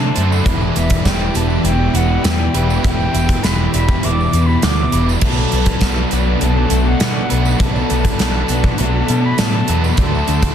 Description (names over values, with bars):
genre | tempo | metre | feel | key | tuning
rock, shoegaze and dream pop | 101 BPM | 4/4 | straight | unclear | A4 = 440 Hz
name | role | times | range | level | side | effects
concert flute | melody | 0.0-10.5 s | E5 to D6 | -25 LUFS | left 1 dB | digital delay
soft string machine | sustained chords | 0.0-10.5 s | G4 to C6 | -28 LUFS | equal | ensemble chorus
picked twelve-string acoustic guitar | arpeggios | 0.0-10.5 s | E3 to G4 | -28 LUFS | left 9 dB | wide subtle chorus, digital delay
biting overdriven guitar | riff | 0.0-10.5 s | B2 to C5 | -23 LUFS | right 11 dB | reverse reverb
crunchy overdriven guitar | riff | 0.0-10.5 s | E2 to D4 | -23 LUFS | equal | none
thick fuzz guitar | riff | 0.0-10.5 s | E2 to D4 | -23 LUFS | left 10 dB | distortion, ensemble chorus
growling picked electric bass | bass | 0.0-10.5 s | E1 to B2 | -18 LUFS | equal | overdrive
gated 80s drum kit | drums | 0.2-10.5 s | crash cymbal, hi-hat, kick drum, snare drum | -18 LUFS | equal | none
tambourine | percussion | 0.3-10.4 s | none | -35 LUFS | right 14 dB | none
room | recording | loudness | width
small room reverb | dense, heavily limited modern master | -13 LUFS | side -9 dB against mid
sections
0.0-10.5 A section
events
none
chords
0.5 Em7; 5.2 Bm7; 10.0 D7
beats
| 0.48 1.07 1.66 2.26 | 2.85 3.44 4.04 4.63 | 5.23 5.82 6.42 7.01 | 7.61 8.20 8.80 9.39 | 9.99